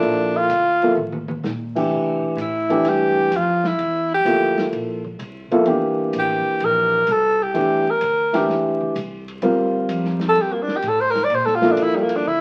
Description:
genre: modal jazz.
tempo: 128 BPM.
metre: 4/4.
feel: swing 68% on 8ths.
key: C mixolydian.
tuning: A4 = 440 Hz.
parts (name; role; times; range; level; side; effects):
breathy tenor saxophone; melody; 0.0-12.4 s; G3 to D5; -21 LUFS; equal; none.
dark baby grand piano; accompaniment; 0.0-12.2 s; E3 to Bb4; -22 LUFS; equal; none.
upright bass; bass; 0.0-12.4 s; G1 to C3; -33 LUFS; equal; none.
vintage drum kit; drums; 0.0-12.2 s; crash cymbal, hi-hat, kick drum, ride cymbal, snare drum, toms; -36 LUFS; equal; none.
room: moderate studio reverb, RT60 0.8 s.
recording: very old 78 rpm record, vinyl crackle.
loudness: -20 LUFS.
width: mono.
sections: 0.0-12.4 A section.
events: tenor saxophone solo 0.0-12.4; drum fill 1.0-1.4.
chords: 0.0 Gm (rootless); 1.9 C9.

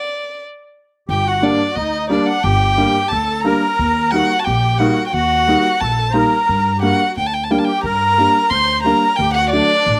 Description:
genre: klezmer.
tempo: 89 BPM.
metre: 2/4.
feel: straight.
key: unclear.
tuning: A4 = 440 Hz.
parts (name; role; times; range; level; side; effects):
dark violin; melody; 0.0-10.0 s; D5 to C6; -19 LUFS; equal; slapback echo.
musette accordion; second line; 1.1-10.0 s; D4 to C5; -26 LUFS; equal; slapback echo.
upright bass; bass; 1.1-10.0 s; G1 to G2; -23 LUFS; equal; none.
warm upright piano; accompaniment; 1.4-9.7 s; F#3 to Eb4; -21 LUFS; equal; none.
room: little or no reverb.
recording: recorded outdoors, with no room sound.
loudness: -16 LUFS.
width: mono.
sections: 0.0-1.1 A section; 1.1-10.0 B section.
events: stop 0.0-1.1.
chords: 0.0 N.C.; 1.1 Gm; 3.8 Eb; 6.5 Gm; 9.2 D.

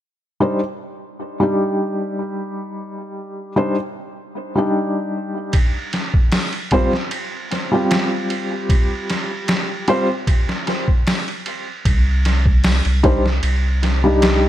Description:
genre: trip hop.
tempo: 76 BPM.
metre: 4/4.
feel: swing 53% on 16ths.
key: C minor.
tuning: A4 = 441 Hz.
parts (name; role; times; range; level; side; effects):
felt-muted upright piano; accompaniment; 0.4-14.5 s; G3 to C5; -20 LUFS; equal; tremolo, low-pass filter, tape echo.
trip hop sampler-style drum kit; drums; 5.5-14.4 s; hi-hat, kick drum, ride cymbal, snare drum; -19 LUFS; equal; none.
round analog bass; bass; 11.9-14.5 s; C2; -17 LUFS; equal; none.
room: little or no reverb.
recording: none.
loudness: -17 LUFS.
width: side -12 dB against mid.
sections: 0.0-11.9 A section; 11.9-14.5 B section.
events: filter sweep on felt piano 11.9-14.5.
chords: 0.0 Cmadd9 (rootless); 5.5 Fsus2; 11.9 Cmadd9.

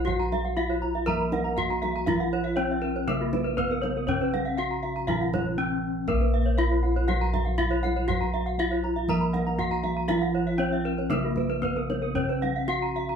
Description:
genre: Balinese gamelan.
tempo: 120 BPM.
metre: 4/4.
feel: straight.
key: Bb pelog.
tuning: A4 = 441 Hz.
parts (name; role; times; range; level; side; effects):
gamelan-type bronze metallophone; melody; 0.0-13.2 s; Bb3 to Bb4; -29 LUFS; left 2 dB; none.
gamelan-type bronze metallophone; accompaniment; 0.0-13.2 s; C3+50c to Bb3; -35 LUFS; right 3 dB; none.
gamelan-type bronze metallophone; arpeggios; 0.0-13.2 s; Gb4-40c to Cb6; -33 LUFS; right 5 dB; none.
gamelan-type bossed gongs; bass; 0.0-13.2 s; Bb1 to Bb4; -29 LUFS; equal; none.
gamelan-type bronze metallophone; arpeggios; 0.1-13.1 s; Bb4 to Bb5; -32 LUFS; left 1 dB; none.
kendang; percussion; 0.1-13.2 s; none; -35 LUFS; right 1 dB; none.
room: moderate studio reverb, RT60 0.6 s.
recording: band playing live in one room.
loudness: -24 LUFS.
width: side -7 dB against mid.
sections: 0.0-13.2 A section.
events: none.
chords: none.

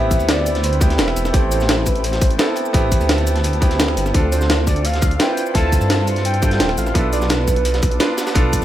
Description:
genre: liquid drum and bass.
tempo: 171 BPM.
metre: 4/4.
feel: straight.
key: A minor.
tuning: A4 = 441 Hz.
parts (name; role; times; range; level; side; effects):
warm velvety synth lead; melody; 0.0-8.0 s; A4 to A5; -25 LUFS; right 1 dB; chorus, digital delay.
clear concert grand piano; accompaniment; 0.0-8.6 s; A3 to B4; -22 LUFS; right 2 dB; none.
ethereal airy pad; sustained chords; 0.1-8.6 s; D5 to D6; -33 LUFS; left 2 dB; ensemble chorus, built-in reverb.
swelling detuned saw bass; bass; 0.0-8.6 s; D1 to G2; -20 LUFS; equal; none.
breakbeat sampler-style drum kit; drums; 0.1-8.6 s; hi-hat, shaker, snare drum; -21 LUFS; equal; studio reverb.
crunchy breakbeat drum kit; drums; 0.1-8.6 s; hi-hat, snare drum; -29 LUFS; equal; high-pass filter on hats, studio reverb, high-pass filter on snare, high-pass filter on room.
electronic kick drum; drums; 0.1-8.6 s; none; -17 LUFS; equal; overdrive, studio reverb.
room: light reverb.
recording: none.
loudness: -15 LUFS.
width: side -12 dB against mid.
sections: 0.0-8.6 A section.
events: none.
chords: 0.0 Am7; 4.1 Dm7; 7.0 Bm7b5.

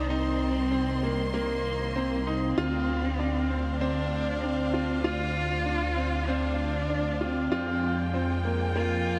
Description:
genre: piano and strings electronica.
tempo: 97 BPM.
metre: 4/4.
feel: straight.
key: unclear.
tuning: A4 = 442 Hz.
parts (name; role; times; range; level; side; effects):
warm cello; melody; 0.0-9.2 s; Bb3 to F4; -33 LUFS; equal; shimmer reverb, tape echo.
clear studio string section; sustained chords; 0.0-9.2 s; Eb3 to C6; -38 LUFS; equal; shimmer reverb.
dark detuned saw bass; bass; 0.0-9.2 s; C2 to F2; -33 LUFS; equal; none.
bright upright piano; riff; 0.1-9.2 s; Bb3 to F4; -34 LUFS; equal; shimmer reverb, tape echo.
room: wet huge ambient reverb, RT60 7.7 s.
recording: dreamy mix soaked in reverb.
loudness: -28 LUFS.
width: mono.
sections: 0.0-9.2 A section.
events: none.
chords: 0.0 Cm7; 2.6 Dm7; 7.5 Fmadd9.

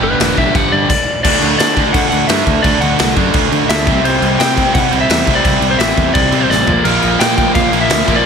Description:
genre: punk rock.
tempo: 171 BPM.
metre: 4/4.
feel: straight.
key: unclear.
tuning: A4 = 440 Hz.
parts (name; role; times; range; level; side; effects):
lightly driven lead guitar; melody; 0.0-8.3 s; Bb4 to G5; -17 LUFS; left 3 dB; digital delay.
crunchy overdriven guitar; riff; 0.0-8.3 s; G2 to D4; -18 LUFS; right 16 dB; none.
overdriven semi-hollow guitar; riff; 0.0-8.3 s; G2 to D4; -20 LUFS; left 16 dB; none.
sludgy distorted guitar; riff; 0.0-0.9, 6.8-8.2 s; G2 to Bb3; -19 LUFS; equal; overdrive.
modern bright picked electric bass; bass; 0.0-8.2 s; E1 to D3; -19 LUFS; equal; none.
raw garage drum kit; drums; 0.2-8.2 s; crash cymbal, kick drum, snare drum, toms; -15 LUFS; equal; none.
room: little or no reverb.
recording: none.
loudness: -10 LUFS.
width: side -6 dB against mid.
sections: 0.0-1.2 A section; 1.2-8.3 B section.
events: lead electric guitar solo 0.0-1.2; drum fill 6.5-6.9.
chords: 0.0 G; 1.2 D; 3.9 C; 6.7 Bb5.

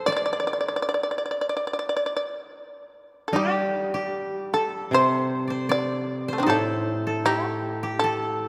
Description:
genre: japanese traditional, Japanese chamber music.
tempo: 68-81 BPM.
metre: 4/4.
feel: rubato.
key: unclear.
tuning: A4 = 438 Hz.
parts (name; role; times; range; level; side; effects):
shamisen; melody; 0.0-8.5 s; A3 to D5; -27 LUFS; equal; none.
koto; second line; 0.0-8.5 s; G4 to D5; -32 LUFS; equal; none.
koto; accompaniment; 3.3-8.5 s; A2 to G3; -30 LUFS; equal; none.
room: wet church reverb, RT60 3.0 s.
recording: none.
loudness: -25 LUFS.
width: mono.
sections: 0.0-3.3 A section; 3.3-8.5 B section.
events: none.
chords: none.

